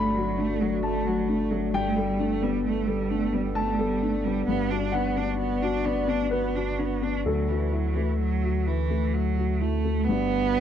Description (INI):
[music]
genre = neoclassical piano and strings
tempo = 65 BPM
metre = 3/4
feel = rubato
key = G major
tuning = A4 = 440 Hz
[part]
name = warm cello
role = second line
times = 0.0-10.6 s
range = E3 to D4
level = -28 LUFS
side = right 8 dB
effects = none
[part]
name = dark baby grand piano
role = accompaniment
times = 0.0-10.6 s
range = D2 to B5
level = -27 LUFS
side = left 5 dB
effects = none
[part]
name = warbly tape-like pad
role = sustained chords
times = 0.0-10.6 s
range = A3 to E5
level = -34 LUFS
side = left 1 dB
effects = chorus, built-in reverb
[part]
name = saturated sub bass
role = bass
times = 0.0-10.6 s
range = G1 to D2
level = -30 LUFS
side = equal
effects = none
[sound]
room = light reverb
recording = dry, close 1970s-style studio recording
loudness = -23 LUFS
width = side -9 dB against mid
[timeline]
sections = 0.0-10.1 A section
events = none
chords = 0.0 D/G; 1.7 Gadd9; 4.5 Bm/G; 7.3 Dadd9; 10.1 Gmaj7